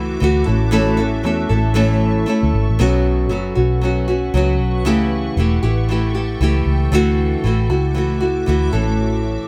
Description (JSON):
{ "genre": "acoustic pop", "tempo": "116 BPM", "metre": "4/4", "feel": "swing 60% on 16ths", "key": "A major", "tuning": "A4 = 440 Hz", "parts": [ { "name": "nylon-string guitar", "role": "accompaniment", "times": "0.0-9.5 s", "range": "A2 to A4", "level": "-20 LUFS", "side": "equal", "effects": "none" }, { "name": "granular cloud pad", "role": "sustained chords", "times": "0.0-9.5 s", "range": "F#4 to D6", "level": "-32 LUFS", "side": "equal", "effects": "built-in reverb" }, { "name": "vintage muted fingered electric bass", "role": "bass", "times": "0.0-9.4 s", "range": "E1 to E2", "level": "-20 LUFS", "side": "equal", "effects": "none" } ], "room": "light reverb", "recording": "none", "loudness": "-17 LUFS", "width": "mono", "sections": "0.0-2.8 A section; 2.8-9.5 B section", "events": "none", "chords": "0.5 A; 2.8 Bsus2; 4.9 A7; 6.9 Dadd9; 8.7 A" }